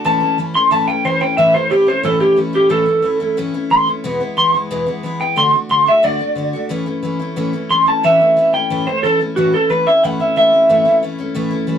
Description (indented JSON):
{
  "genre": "rock",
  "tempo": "180 BPM",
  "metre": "4/4",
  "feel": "straight",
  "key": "A mixolydian",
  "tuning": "A4 = 441 Hz",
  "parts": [
    { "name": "electric guitar through a small old amp", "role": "melody", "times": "0.0-11.0 s", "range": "F#4 to C6", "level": "-12 LUFS", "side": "equal", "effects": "none" },
    { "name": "picked steel-string acoustic guitar", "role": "accompaniment", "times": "0.0-11.8 s", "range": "E2 to F#4", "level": "-20 LUFS", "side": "left 1 dB", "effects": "none" }
  ],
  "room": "moderate booth ambience, RT60 0.2 s",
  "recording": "rough rehearsal-room recording",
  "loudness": "-13 LUFS",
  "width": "side -8 dB against mid",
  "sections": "0.0-9.4 A section; 9.4-11.8 B section",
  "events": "clean electric guitar solo 9.4-11.8",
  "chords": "0.0 A; 4.0 E; 5.4 D; 6.7 A",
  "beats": "| 0.05 0.38 0.71 1.05 | 1.38 1.71 2.05 2.38 | 2.71 3.04 3.38 3.71 | 4.04 4.38 4.71 5.04 | 5.37 5.71 6.04 6.37 | 6.71 7.04 7.37 7.70 | 8.04 8.37 8.70 9.03 | 9.36 9.70 10.03 10.36 | 10.69 11.02 11.36 11.69"
}